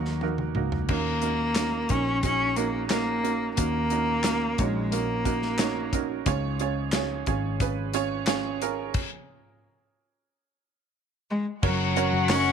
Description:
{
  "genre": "piano-driven pop",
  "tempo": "89 BPM",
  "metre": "4/4",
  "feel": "straight",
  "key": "unclear",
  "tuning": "A4 = 440 Hz",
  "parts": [
    { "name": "warm cello", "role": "melody", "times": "0.0-5.9, 11.3-12.5 s", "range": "F#3 to C#4", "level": "-27 LUFS", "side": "left 1 dB", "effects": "none" },
    { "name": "clear upright piano", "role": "accompaniment", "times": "0.0-12.5 s", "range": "G#2 to D#5", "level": "-29 LUFS", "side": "right 12 dB", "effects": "none" },
    { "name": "vintage muted picked electric bass", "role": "bass", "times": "0.0-12.5 s", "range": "F#1 to D#2", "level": "-31 LUFS", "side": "left 2 dB", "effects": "none" },
    { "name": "modern studio drum kit", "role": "drums", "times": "0.1-12.5 s", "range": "crash cymbal, handclaps, hi-hat, kick drum, snare drum, toms", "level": "-30 LUFS", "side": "left 2 dB", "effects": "none" },
    { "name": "warm studio violin section", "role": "second line", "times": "11.6-12.5 s", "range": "F#4 to F#5", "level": "-28 LUFS", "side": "left 15 dB", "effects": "none" }
  ],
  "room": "light reverb, studio ambience",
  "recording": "1960s-style stereo with parts hard left and right",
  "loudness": "-24 LUFS",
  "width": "side -7 dB against mid",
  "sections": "0.9-11.6 A section",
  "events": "drum fill 0.2-0.9; stop 8.9-11.6",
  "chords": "0.0 D#m; 0.9 D#m7; 6.3 C#; 11.6 F#"
}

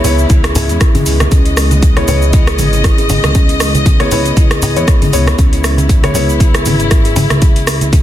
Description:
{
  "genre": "afro house",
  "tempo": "118 BPM",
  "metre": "4/4",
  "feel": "swing 55% on 16ths",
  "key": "C# minor",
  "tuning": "A4 = 439 Hz",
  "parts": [
    { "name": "rich studio string section", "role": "sustained chords", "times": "0.0-8.0 s", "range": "C#3 to D#5", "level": "-20 LUFS", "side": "left 2 dB", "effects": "sidechain pumping" },
    { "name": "kalimba", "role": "arpeggios", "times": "0.0-7.2 s", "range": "G#3 to B4", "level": "-20 LUFS", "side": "right 1 dB", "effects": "sidechain pumping, dub echo" },
    { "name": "felt-muted upright piano", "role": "stabs", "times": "0.0-7.7 s", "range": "B3 to C#5", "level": "-20 LUFS", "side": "left 3 dB", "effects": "sidechain pumping, dub echo" },
    { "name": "smooth gliding synth bass", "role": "bass", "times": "0.0-8.0 s", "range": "G#1 to E2", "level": "-15 LUFS", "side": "equal", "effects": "sidechain pumping" },
    { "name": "afro-pop drum kit", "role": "drums", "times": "0.0-8.0 s", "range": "cabasa, hi-hat, rim click, toms", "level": "-17 LUFS", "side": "equal", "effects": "overdrive" },
    { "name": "congas", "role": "percussion", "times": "0.0-8.0 s", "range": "none", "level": "-20 LUFS", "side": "right 2 dB", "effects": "none" },
    { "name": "djembe", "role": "percussion", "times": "0.0-8.0 s", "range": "none", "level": "-22 LUFS", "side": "left 2 dB", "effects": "none" },
    { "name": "electronic kick drum", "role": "drums", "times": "0.3-8.0 s", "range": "none", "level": "-10 LUFS", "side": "equal", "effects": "none" }
  ],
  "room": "studio ambience",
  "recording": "dense, heavily limited modern master",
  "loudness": "-9 LUFS",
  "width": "side -12 dB against mid",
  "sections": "0.0-8.0 A section",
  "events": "none",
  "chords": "0.0 C#m7"
}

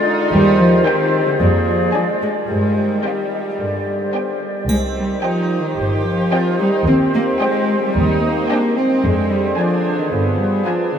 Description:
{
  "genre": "cinematic, playful, whimsical film cue",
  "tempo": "110 BPM",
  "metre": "4/4",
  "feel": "straight",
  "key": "C minor",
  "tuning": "A4 = 444 Hz",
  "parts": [
    { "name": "rich studio violin section", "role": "melody", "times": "0.0-11.0 s", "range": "F5 to Ab5", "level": "-30 LUFS", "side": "right 1 dB", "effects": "none" },
    { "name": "flute section", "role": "second line", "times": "0.0-11.0 s", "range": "B4 to F5", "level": "-25 LUFS", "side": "equal", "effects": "none" },
    { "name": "warm clarinet", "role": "second line", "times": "0.0-11.0 s", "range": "F4 to Ab4", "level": "-24 LUFS", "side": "left 2 dB", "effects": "none" },
    { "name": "warm studio violin section", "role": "second line", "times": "0.0-11.0 s", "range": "B3 to F5", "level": "-30 LUFS", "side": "left 3 dB", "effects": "none" },
    { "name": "mellow bassoon", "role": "accompaniment", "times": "0.0-10.9 s", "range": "D3 to F3", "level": "-26 LUFS", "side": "left 1 dB", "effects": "none" },
    { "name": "rich studio viola section", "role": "accompaniment", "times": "0.0-11.0 s", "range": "G3 to G4", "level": "-24 LUFS", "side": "right 3 dB", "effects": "none" },
    { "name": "dark French horn section", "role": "sustained chords", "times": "0.3-11.0 s", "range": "D3 to C4", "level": "-23 LUFS", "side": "equal", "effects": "none" },
    { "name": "dark studio double bass section", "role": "bass", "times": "0.3-10.6 s", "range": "G1 to G2", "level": "-21 LUFS", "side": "equal", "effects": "none" },
    { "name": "warm studio cello section", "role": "bass", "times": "0.3-11.0 s", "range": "D3 to C4", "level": "-20 LUFS", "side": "equal", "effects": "none" },
    { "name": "triangle", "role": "percussion", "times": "4.7-5.7 s", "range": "none", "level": "-36 LUFS", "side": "right 8 dB", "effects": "none" }
  ],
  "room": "wet huge ambient reverb, RT60 7.5 s",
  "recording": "in a vast, echoing space",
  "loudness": "-15 LUFS",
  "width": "side -8 dB against mid",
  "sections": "0.0-11.0 A section",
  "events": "none",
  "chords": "0.3 Cm/Eb; 1.4 Ddim/F; 2.5 Cm/G; 3.6 G; 4.7 Cm; 6.9 Cm/Eb; 9.0 Dm7b5/F; 10.1 G7b9"
}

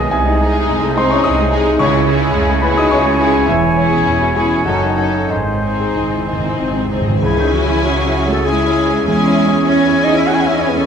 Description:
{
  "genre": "classical",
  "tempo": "91-110 BPM",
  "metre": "3/4",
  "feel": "rubato",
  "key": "C# minor",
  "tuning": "A4 = 441 Hz",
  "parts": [
    { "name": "clear concert grand piano", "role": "melody", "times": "0.0-10.9 s", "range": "B1 to D#6", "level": "-18 LUFS", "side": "equal", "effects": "none" },
    { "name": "clear studio violin section", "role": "melody", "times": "0.0-10.8 s", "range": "G#4 to G#5", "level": "-26 LUFS", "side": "left 4 dB", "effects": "none" },
    { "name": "concert flute", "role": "second line", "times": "0.0-6.9 s", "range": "G#5 to A5", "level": "-23 LUFS", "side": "left 4 dB", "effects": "none" },
    { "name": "rich studio violin section", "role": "second line", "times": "0.0-10.8 s", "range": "B3 to E4", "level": "-25 LUFS", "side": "left 3 dB", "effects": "none" },
    { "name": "warm oboe", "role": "second line", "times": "0.0-6.9 s", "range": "B#4 to D#5", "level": "-23 LUFS", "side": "right 1 dB", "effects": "none" },
    { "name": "clear studio viola section", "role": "accompaniment", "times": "0.0-10.8 s", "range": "G#3 to C#4", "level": "-24 LUFS", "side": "right 1 dB", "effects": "none" },
    { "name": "mellow French horn section", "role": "sustained chords", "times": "0.0-10.9 s", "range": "D#3 to G#4", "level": "-21 LUFS", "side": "left 1 dB", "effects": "none" },
    { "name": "clear studio cello section", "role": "bass", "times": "0.0-10.9 s", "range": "E2 to G#4", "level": "-22 LUFS", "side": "right 4 dB", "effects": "none" },
    { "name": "warm studio double bass section", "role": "bass", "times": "0.0-10.9 s", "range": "E1 to E2", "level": "-22 LUFS", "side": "right 2 dB", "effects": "none" },
    { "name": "warm clarinet", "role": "second line", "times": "0.1-10.9 s", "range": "D#4 to G#5", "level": "-22 LUFS", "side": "left 2 dB", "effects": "none" },
    { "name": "timpani", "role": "percussion", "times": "5.3-7.2 s", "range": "G#2", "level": "-23 LUFS", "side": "right 1 dB", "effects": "none" }
  ],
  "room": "wet scoring stage reverb, RT60 1.7 s",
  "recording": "minimal, uncompressed stereo recording",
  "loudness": "-12 LUFS",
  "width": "side -7 dB against mid",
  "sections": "0.0-7.2 A section; 7.2-10.9 B section",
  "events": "timpani fill 5.3-7.2",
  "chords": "0.1 G#/B#; 1.8 C#m; 3.5 C#m/E; 4.7 D#m7b5/F#; 5.3 G#; 7.2 C#m; 9.1 C#m/E"
}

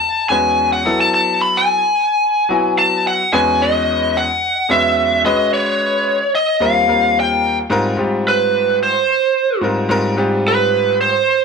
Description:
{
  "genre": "jazz",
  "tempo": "110 BPM",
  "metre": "4/4",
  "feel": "straight",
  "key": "E major, Ab major from 7.7 s",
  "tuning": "A4 = 445 Hz",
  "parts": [
    { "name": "lead guitar through a small cranked amp", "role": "melody", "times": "0.0-11.4 s", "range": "Cb5 to B5", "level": "-14 LUFS", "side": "equal", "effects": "overdrive" },
    { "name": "bright concert grand piano", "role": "accompaniment", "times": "0.3-11.1 s", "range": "D#2 to B4", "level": "-19 LUFS", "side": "left 1 dB", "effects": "none" }
  ],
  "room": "moderate studio ambience, RT60 0.5 s",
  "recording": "none",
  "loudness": "-13 LUFS",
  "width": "side -5 dB against mid",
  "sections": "0.0-7.7 A section; 7.7-11.4 B section",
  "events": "lead electric guitar solo 7.7-11.4",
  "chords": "0.0 E; 0.9 F#m9; 3.3 Emaj7; 5.2 G#m7; 6.6 D#69; 7.7 Abmaj9"
}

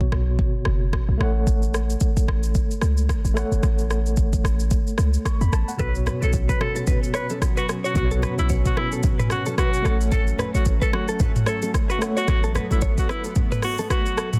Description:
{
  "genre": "afrobeats",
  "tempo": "111 BPM",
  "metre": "4/4",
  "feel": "swing 58% on 16ths",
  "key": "unclear",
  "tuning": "A4 = 440 Hz",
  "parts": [
    { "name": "tine electric piano", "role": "accompaniment", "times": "0.0-14.4 s", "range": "B2 to C#6", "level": "-32 LUFS", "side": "equal", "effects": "fast tremolo" },
    { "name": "warm 808-style bass", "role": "bass", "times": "0.0-13.0 s", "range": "F#1 to E2", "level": "-24 LUFS", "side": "equal", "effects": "none" },
    { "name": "afro-pop drum kit", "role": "drums", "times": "0.0-14.4 s", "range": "hi-hat, kick drum, rim click, shaker, toms", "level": "-25 LUFS", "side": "equal", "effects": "soft clipping on snare" },
    { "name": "bright alto saxophone", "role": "melody", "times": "5.8-14.3 s", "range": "E4 to B4", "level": "-31 LUFS", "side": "equal", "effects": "delay" },
    { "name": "warm analog pad", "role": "sustained chords", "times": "5.8-14.4 s", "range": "F#3 to C#4", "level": "-36 LUFS", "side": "equal", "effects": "chorus, tremolo" },
    { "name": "direct-recorded clean electric guitar", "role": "riff", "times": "5.8-14.3 s", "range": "A4 to C#5", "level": "-34 LUFS", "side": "equal", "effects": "phaser, delay" },
    { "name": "congas and bongos", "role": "percussion", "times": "5.8-14.1 s", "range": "none", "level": "-35 LUFS", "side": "equal", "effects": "none" }
  ],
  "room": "little or no reverb",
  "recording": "dense, heavily limited modern master",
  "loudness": "-22 LUFS",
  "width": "mono",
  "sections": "0.0-5.8 A section; 5.8-14.4 B section",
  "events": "none",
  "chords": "0.0 Bsus2; 1.2 F#m/A; 5.8 Bsus2; 9.8 F#m/A"
}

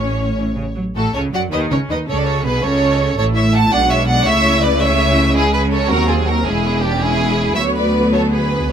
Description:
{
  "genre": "quick classical-period movement for string orchestra",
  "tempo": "108 BPM (dotted quarters)",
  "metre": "6/8",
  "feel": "rubato",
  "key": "unclear",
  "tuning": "A4 = 440 Hz",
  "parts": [
    { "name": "clear studio violin section", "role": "melody", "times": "0.0-8.7 s", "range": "G4 to A5", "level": "-19 LUFS", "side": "right 1 dB", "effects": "none" },
    { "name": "rich studio violin section", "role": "second line", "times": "0.0-8.7 s", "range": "D4 to F#5", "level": "-22 LUFS", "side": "right 1 dB", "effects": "none" },
    { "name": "rich studio viola section", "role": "accompaniment", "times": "0.0-8.7 s", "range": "Gb3 to F#4", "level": "-21 LUFS", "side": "left 1 dB", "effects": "none" },
    { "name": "rich studio cello section", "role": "bass", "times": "0.0-8.7 s", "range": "D2 to F#3", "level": "-21 LUFS", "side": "right 1 dB", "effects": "none" },
    { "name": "rich studio double bass section", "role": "bass", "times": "0.0-8.7 s", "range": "E1 to F#2", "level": "-20 LUFS", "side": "right 2 dB", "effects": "none" }
  ],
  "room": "light reverb",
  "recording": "close, detailed microphones",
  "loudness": "-14 LUFS",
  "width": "side -8 dB against mid",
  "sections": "1.0-8.7 A section",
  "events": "none",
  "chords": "0.0 F#m/A; 1.5 Badd9 (rootless); 2.1 B7sus2; 3.2 A5; 3.7 G#dim/B; 4.3 A/C#; 5.4 C#m; 5.9 Cdim/Eb; 6.4 C#m/E; 7.6 Bm/D"
}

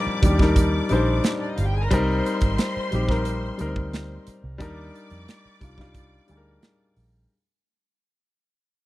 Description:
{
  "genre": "lush 1970s-style soul",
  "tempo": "89 BPM",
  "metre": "4/4",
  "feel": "straight",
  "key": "Eb major",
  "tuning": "A4 = 440 Hz",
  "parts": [
    { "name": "clear studio string section", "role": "second line", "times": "0.0-6.9 s", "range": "D4 to D6", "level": "-32 LUFS", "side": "left 2 dB", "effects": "none" },
    { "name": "warm grand piano", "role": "accompaniment", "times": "0.0-7.3 s", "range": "F3 to C5", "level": "-25 LUFS", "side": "left 2 dB", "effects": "none" },
    { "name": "vintage muted fingered electric bass", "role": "bass", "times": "0.1-7.2 s", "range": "G1 to F2", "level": "-25 LUFS", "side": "right 1 dB", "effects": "none" },
    { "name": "modern studio drum kit", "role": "drums", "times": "0.2-7.1 s", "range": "hi-hat, kick drum, snare drum", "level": "-22 LUFS", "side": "right 1 dB", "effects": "none" }
  ],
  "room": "small room ambience",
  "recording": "dry, close 1970s-style studio recording",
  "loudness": "-20 LUFS",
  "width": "side -17 dB against mid",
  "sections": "0.0-7.3 A section",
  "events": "fade-out 0.0-7.3",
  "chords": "0.0 Ebmaj7; 1.9 Cm7; 4.6 Ebmaj7"
}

